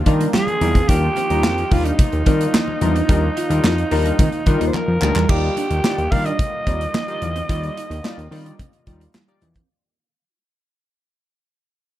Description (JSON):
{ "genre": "early-eighties boogie funk", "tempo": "109 BPM", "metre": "4/4", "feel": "straight", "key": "Eb major", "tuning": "A4 = 440 Hz", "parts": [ { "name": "growling alto saxophone", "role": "melody", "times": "0.0-9.1 s", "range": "Eb4 to F5", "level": "-23 LUFS", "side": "right 1 dB", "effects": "none" }, { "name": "lush unison pad", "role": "sustained chords", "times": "0.0-9.7 s", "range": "D3 to F4", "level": "-31 LUFS", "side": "equal", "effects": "chorus" }, { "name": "fat analog bass", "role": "bass", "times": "0.0-9.6 s", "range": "D2 to Eb3", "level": "-21 LUFS", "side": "equal", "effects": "none" }, { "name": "chorused polysynth", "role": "accompaniment", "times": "0.1-9.5 s", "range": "G3 to D5", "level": "-26 LUFS", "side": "left 2 dB", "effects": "none" }, { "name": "clean electric guitar", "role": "riff", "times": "0.1-9.7 s", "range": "G3 to G4", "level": "-28 LUFS", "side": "right 5 dB", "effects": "ensemble chorus" }, { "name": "modern studio drum kit", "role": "drums", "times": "0.1-9.7 s", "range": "crash cymbal, handclaps, hi-hat, kick drum, snare drum", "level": "-20 LUFS", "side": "equal", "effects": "none" }, { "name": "congas", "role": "percussion", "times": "0.1-9.6 s", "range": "none", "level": "-29 LUFS", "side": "left 2 dB", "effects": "none" } ], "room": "light reverb", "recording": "dark, warm production", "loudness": "-16 LUFS", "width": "side -13 dB against mid", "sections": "0.0-5.3 A section; 5.3-9.7 B section", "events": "drum fill 4.7-5.3; fade-out 5.3-9.7", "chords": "0.0 Ebmaj9" }